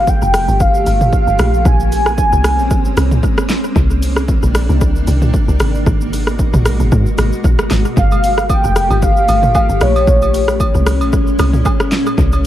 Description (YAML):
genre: amapiano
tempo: 114 BPM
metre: 4/4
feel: swing 55% on 16ths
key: unclear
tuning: A4 = 440 Hz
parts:
  - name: warm velvety synth lead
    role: melody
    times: 0.0-3.2, 8.0-10.9 s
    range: C#5 to Ab5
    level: -16 LUFS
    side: equal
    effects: chorus, analog delay
  - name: granular cloud pad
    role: sustained chords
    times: 0.0-12.5 s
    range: Bb2 to G4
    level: -20 LUFS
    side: equal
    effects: built-in reverb
  - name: deep log drum bass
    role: bass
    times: 0.0-12.5 s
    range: F1 to Ab2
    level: -15 LUFS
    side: equal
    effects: none
  - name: deep house drum kit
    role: drums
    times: 0.1-12.4 s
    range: hi-hat, kick drum, rim click, shaker, snare drum, toms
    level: -15 LUFS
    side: equal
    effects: analog delay
  - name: agogo bells and woodblock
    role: percussion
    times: 8.1-12.4 s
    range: none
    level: -25 LUFS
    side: right 3 dB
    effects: none
room: little or no reverb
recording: echo-heavy mix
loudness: -11 LUFS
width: side -12 dB against mid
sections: 0.0-12.5 A section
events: none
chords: 0.0 Gm9; 1.7 Bbm9; 3.8 Cm9; 5.6 Abm9; 8.0 Gm9; 10.1 Bbm9